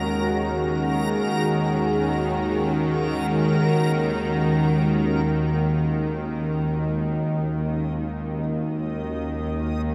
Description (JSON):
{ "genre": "dark ambient drone", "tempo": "free time", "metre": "none", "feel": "none", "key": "Eb minor", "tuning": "A4 = 439 Hz", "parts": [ { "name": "deep dark ambient pad", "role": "sustained chords", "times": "0.0-9.9 s", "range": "Eb3 to Bb4", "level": "-28 LUFS", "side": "equal", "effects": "chorus, built-in reverb" }, { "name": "bowed-like drone", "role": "drone", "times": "0.0-9.9 s", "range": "Eb2 to Eb3", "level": "-26 LUFS", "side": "equal", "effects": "built-in reverb" }, { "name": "backwards swelling texture", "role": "texture", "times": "0.0-9.9 s", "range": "Bb4 to Eb5", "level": "-34 LUFS", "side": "equal", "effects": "built-in reverb" } ], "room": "wet huge ambient reverb, RT60 7.6 s", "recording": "none", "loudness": "-23 LUFS", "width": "mono", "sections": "0.0-5.3 A section; 5.3-9.9 B section", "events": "none", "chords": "0.0 Ebm" }